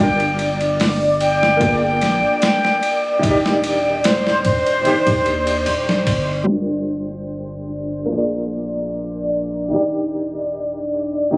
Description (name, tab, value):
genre	trip hop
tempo	74 BPM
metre	4/4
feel	straight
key	G minor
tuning	A4 = 443 Hz
part	bright reedy concert flute	melody	0.0-6.3 s	C5 to G5	-20 LUFS	equal	tape echo
part	felt-muted upright piano	accompaniment	0.0-11.4 s	Eb3 to D5	-22 LUFS	equal	tremolo, low-pass filter, tape echo
part	deep dark ambient pad	sustained chords	0.0-11.4 s	D5	-21 LUFS	equal	chorus, built-in reverb
part	round analog bass	bass	0.0-11.4 s	Eb1 to Eb2	-28 LUFS	equal	none
part	boom bap sampler-style drum kit	drums	0.2-6.3 s	hi-hat, kick drum, ride cymbal, snare drum	-22 LUFS	equal	none
room	light reverb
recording	recorded on a phone in the room, studio ambience, vinyl crackle, compression, low-pass filter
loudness	-16 LUFS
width	side -24 dB against mid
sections	0.0-6.5 A section; 6.5-11.4 B section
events	filter sweep on felt piano 0.0-6.5, 6.5-11.4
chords	0.0 Gm7; 1.6 Bb7; 3.2 Ebmaj7; 4.9 Cm/Eb; 6.5 Gm7; 8.1 Bb7; 9.7 Ebmaj7